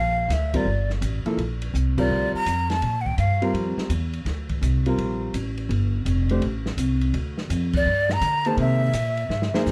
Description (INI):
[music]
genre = modal jazz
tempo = 167 BPM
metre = 4/4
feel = swing 65% on 8ths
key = G dorian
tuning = A4 = 435 Hz
[part]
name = breathy jazz flute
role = melody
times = 0.0-3.5, 7.8-9.6 s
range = D5 to Bb5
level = -27 LUFS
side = equal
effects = plate reverb
[part]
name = upright bass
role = bass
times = 0.0-9.7 s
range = F1 to D3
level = -26 LUFS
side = equal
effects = none
[part]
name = open jazz drum kit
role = drums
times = 0.3-9.7 s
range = crash cymbal, hi-hat, kick drum, ride cymbal, snare drum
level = -35 LUFS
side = equal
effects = none
[part]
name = clear grand piano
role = accompaniment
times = 0.5-9.7 s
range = Eb3 to C5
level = -28 LUFS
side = equal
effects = none
[sound]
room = light reverb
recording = dark, warm production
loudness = -24 LUFS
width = mono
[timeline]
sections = 0.0-9.7 A section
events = band accent 1.9, 7.7; drum fill 9.3-9.7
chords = 0.0 Gm9; 8.6 C7alt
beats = 0.29 0.66 1.02 | 1.38 1.74 2.10 2.46 | 2.82 3.18 3.54 3.90 | 4.26 4.62 4.98 5.34 | 5.70 6.06 6.42 6.78 | 7.14 7.50 7.86 8.22 | 8.58 8.94 9.30 9.66